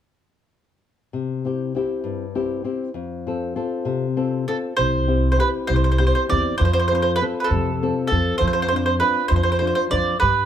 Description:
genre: italian folk, Italian serenade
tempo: 66 BPM (dotted quarters)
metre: 6/8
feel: straight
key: C major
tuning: A4 = 440 Hz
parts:
  - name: nylon-string guitar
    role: accompaniment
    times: 1.1-10.5 s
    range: F2 to D5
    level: -24 LUFS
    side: left 5 dB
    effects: none
  - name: mandolin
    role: melody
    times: 4.5-10.5 s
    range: A4 to D5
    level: -21 LUFS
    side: right 3 dB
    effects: plate reverb
  - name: upright bass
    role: bass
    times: 4.8-10.5 s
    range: C2 to G2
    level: -21 LUFS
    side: right 1 dB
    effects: none
room: moderate small room reverb, RT60 0.5 s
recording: heard from further back in the room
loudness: -19 LUFS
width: side -9 dB against mid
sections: 1.1-4.8 A section; 4.8-10.5 B section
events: none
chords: 1.1 C; 3.0 F; 4.8 C; 6.6 F; 8.4 Dm7/F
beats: | 1.13 2.05 | 2.96 3.87 | 4.78 5.69 | 6.60 7.51 | 8.41 9.31 | 10.22

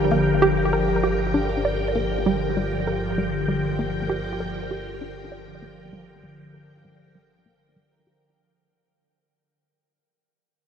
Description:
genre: ambient, sequencer-driven space music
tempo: 98 BPM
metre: 4/4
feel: straight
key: G minor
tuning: A4 = 440 Hz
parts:
  - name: phased string machine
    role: sustained chords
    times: 0.0-8.4 s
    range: D3 to G5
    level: -25 LUFS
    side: equal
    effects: ensemble chorus, phaser
  - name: vibraphone with soft mallets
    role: arpeggios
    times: 0.0-8.4 s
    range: G4 to Bb5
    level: -30 LUFS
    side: left 4 dB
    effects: auto-pan, tape echo
  - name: analog drone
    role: bass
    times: 0.0-8.3 s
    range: G1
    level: -31 LUFS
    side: equal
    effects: chorus
  - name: hollow square pluck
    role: riff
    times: 0.1-8.2 s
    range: G3 to D5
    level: -25 LUFS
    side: right 2 dB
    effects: chorus, tape echo
room: wet huge ambient reverb, RT60 8.0 s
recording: none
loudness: -21 LUFS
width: side -8 dB against mid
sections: 0.0-8.4 A section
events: fade-out on vibraphone 0.0-8.4; fade-out on synth drone 0.0-8.4; fade-out 0.0-8.4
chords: 0.0 Gm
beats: 0.42 | 1.03 1.64 2.25 2.87 | 3.48 4.09 4.70 5.32 | 5.93 6.54 7.15 7.76

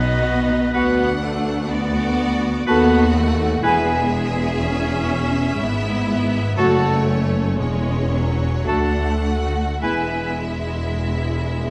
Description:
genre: classical, slow romantic movement for symphony orchestra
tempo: 48-63 BPM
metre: 3/4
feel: rubato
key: unclear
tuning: A4 = 440 Hz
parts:
  - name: rich symphonic violin section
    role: melody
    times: 0.0-11.7 s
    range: C#5 to F#5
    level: -33 LUFS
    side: equal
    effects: none
  - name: bright oboe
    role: second line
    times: 0.0-10.3 s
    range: A4 to B4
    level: -29 LUFS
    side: equal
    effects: none
  - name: flute section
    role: second line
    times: 0.0-10.4 s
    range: D#5 to A5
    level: -27 LUFS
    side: equal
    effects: none
  - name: rich studio violin section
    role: second line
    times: 0.0-11.7 s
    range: C#4 to G#4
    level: -32 LUFS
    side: equal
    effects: none
  - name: warm clarinet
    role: second line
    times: 0.0-10.3 s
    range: E4 to F#4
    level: -29 LUFS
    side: equal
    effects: none
  - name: clear symphonic viola section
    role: accompaniment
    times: 0.0-11.7 s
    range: F#3 to C#4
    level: -27 LUFS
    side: equal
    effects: none
  - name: mellow French horn section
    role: sustained chords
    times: 0.0-10.3 s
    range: F#3 to A4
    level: -27 LUFS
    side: equal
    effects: none
  - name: dark symphonic cello section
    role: bass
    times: 0.0-11.7 s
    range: D2 to B2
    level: -28 LUFS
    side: equal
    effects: none
  - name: rich chamber double bass section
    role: bass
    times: 0.0-11.7 s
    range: E1 to D#2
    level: -25 LUFS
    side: equal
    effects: none
room: moderate scoring stage reverb, RT60 1.6 s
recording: vinyl crackle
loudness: -20 LUFS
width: mono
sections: 0.0-11.7 A section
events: none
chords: 0.0 B; 0.7 Bm/D; 2.7 B7/D#; 3.6 E; 6.6 F#m; 8.7 D; 9.8 E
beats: | 0.74 1.71 2.69 | 3.65 4.61 5.59 | 6.58 7.60 8.67 | 9.83 11.03

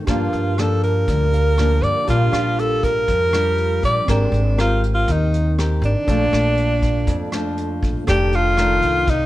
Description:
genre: bossa nova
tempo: 120 BPM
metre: 4/4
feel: straight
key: Bb major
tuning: A4 = 440 Hz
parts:
  - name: barky tine electric piano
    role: accompaniment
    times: 0.0-9.3 s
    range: Bb3 to G5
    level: -30 LUFS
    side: right 6 dB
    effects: medium stereo tremolo
  - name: nylon-string guitar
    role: accompaniment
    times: 0.0-9.3 s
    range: F2 to Bb4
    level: -25 LUFS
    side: left 2 dB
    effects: none
  - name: breathy alto saxophone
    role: melody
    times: 0.1-9.3 s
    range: D4 to D5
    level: -20 LUFS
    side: equal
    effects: none
  - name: upright bass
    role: bass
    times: 0.1-9.3 s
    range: F1 to G2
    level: -20 LUFS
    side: equal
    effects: none
  - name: vintage brush drum kit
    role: drums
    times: 0.1-9.2 s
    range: hi-hat, kick drum, rim click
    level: -26 LUFS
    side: equal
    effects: none
room: light reverb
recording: none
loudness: -16 LUFS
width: side -15 dB against mid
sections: 0.0-8.1 A section; 8.1-9.3 B section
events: none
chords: 0.1 Gm7; 2.1 Bb6; 4.1 Abmaj9; 6.1 Bbmaj7; 8.1 F13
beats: | 0.07 0.57 1.07 1.57 | 2.07 2.58 3.08 3.58 | 4.08 4.58 5.08 5.58 | 6.08 6.58 7.08 7.58 | 8.08 8.58 9.08

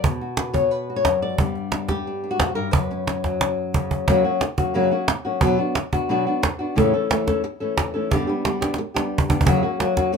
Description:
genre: flamenco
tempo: 178 BPM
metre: 4/4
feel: straight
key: unclear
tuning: A4 = 440 Hz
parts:
  - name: flamenco guitar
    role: melody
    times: 0.0-10.2 s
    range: F#2 to D5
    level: -21 LUFS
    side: left 2 dB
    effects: none
  - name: cajon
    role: percussion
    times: 0.0-10.1 s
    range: none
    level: -22 LUFS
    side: right 2 dB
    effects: none
room: moderate small room reverb, RT60 0.5 s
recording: close, detailed microphones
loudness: -19 LUFS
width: side -6 dB against mid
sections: 0.0-4.1 A section; 4.1-9.5 B section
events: drum fill 3.4-4.1, 8.6-9.5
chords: 0.0 B5; 1.4 G; 2.7 F#sus4; 4.1 F#; 5.4 Bm; 6.8 A; 8.1 G; 9.5 F#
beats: | 0.04 0.38 0.71 1.05 | 1.39 1.73 2.06 2.40 | 2.73 3.07 3.40 3.74 | 4.08 4.41 4.75 5.08 | 5.42 5.76 6.09 6.43 | 6.77 7.10 7.44 7.78 | 8.11 8.45 8.79 9.12 | 9.46 9.80 10.13

